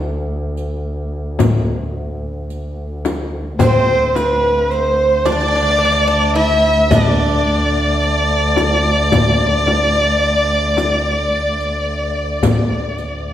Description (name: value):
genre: Turkish makam ensemble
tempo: 109 BPM (eighths)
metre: 10/8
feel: straight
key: unclear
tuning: A4 = 440 Hz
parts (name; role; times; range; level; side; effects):
- muted double bass; drone; 0.0-13.3 s; D2; -20 LUFS; equal; none
- riq; percussion; 0.6-13.1 s; none; -26 LUFS; right 3 dB; none
- darbuka; percussion; 1.4-13.1 s; none; -20 LUFS; left 2 dB; none
- frame drum; percussion; 1.4-12.7 s; none; -21 LUFS; left 4 dB; none
- rich violin; melody; 3.6-13.3 s; B4-31c to E5-26c; -17 LUFS; right 1 dB; none
- Greek bouzouki; second line; 3.6-13.3 s; C4 to E4-30c; -24 LUFS; right 2 dB; none
- warm studio violin section; second line; 3.6-13.3 s; B4-30c to E5-30c; -20 LUFS; left 2 dB; none
room: wet recital hall reverb, RT60 1.5 s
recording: recorded in a church or concert hall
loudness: -14 LUFS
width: side -11 dB against mid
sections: 0.0-13.3 A section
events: none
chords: none